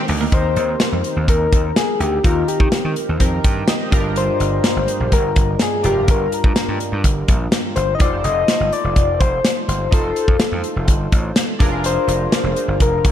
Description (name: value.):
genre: 1980s-style pop.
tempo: 125 BPM.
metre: 4/4.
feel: straight.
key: Eb major.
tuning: A4 = 440 Hz.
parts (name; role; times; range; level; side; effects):
soft struck synth lead; melody; 0.0-13.1 s; F4 to Eb5; -21 LUFS; left 4 dB; chorus.
chorused retro synth keys; accompaniment; 0.0-13.1 s; G2 to G5; -24 LUFS; right 1 dB; none.
gritty slap bass; bass; 0.1-13.1 s; F1 to Eb3; -22 LUFS; equal; overdrive.
modern studio drum kit; drums; 0.1-13.1 s; hi-hat, kick drum, snare drum; -18 LUFS; equal; none.
room: light reverb, studio reverb.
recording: dark, warm production.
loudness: -15 LUFS.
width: side -10 dB against mid.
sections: 0.3-13.1 A section.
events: none.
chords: 0.3 Eb6; 3.9 Gm7; 8.0 F7; 11.6 Bb7/F.